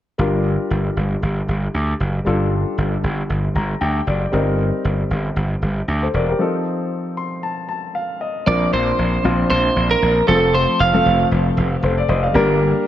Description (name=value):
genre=1980s-style pop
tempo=116 BPM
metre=4/4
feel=swing 55% on 16ths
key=G minor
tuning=A4 = 441 Hz
part: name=warm grand piano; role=accompaniment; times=0.2-12.9 s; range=F3 to C6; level=-21 LUFS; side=left 2 dB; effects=none
part: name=gritty slap bass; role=bass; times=0.2-12.7 s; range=E1 to D2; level=-19 LUFS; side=equal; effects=overdrive
part: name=lightly driven lead guitar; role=melody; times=8.5-11.3 s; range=A4 to F5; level=-18 LUFS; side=right 3 dB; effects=ping-pong delay
room=light reverb, studio ambience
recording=none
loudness=-16 LUFS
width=side -12 dB against mid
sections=0.2-8.5 A section; 8.5-12.9 B section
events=grand piano fill 3.3-4.3, 6.9-8.5; break 6.4-8.5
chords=0.2 Gm7; 4.3 Cm7/G; 6.4 F7; 8.5 Bbadd9; 10.3 F; 12.3 Gm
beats=| 0.19 0.71 1.23 1.74 | 2.26 2.78 3.29 3.81 | 4.33 4.85 5.36 5.88 | 6.40 6.92 7.43 7.95 | 8.47 8.98 9.50 10.02 | 10.54 11.05 11.57 12.09 | 12.60